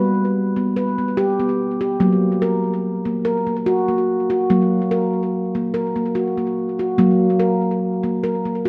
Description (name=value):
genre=world meditative, meditative tuned percussion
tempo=72 BPM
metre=3/4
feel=straight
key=unclear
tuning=A4 = 439 Hz
part: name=handpan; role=solo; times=0.0-8.7 s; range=F#3 to B4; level=-20 LUFS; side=equal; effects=delay
room=wet echo chamber reverb, RT60 1.7 s, small room ambience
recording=none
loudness=-20 LUFS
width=mono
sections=0.0-7.0 A section; 7.0-8.7 B section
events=none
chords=0.0 G; 2.0 F#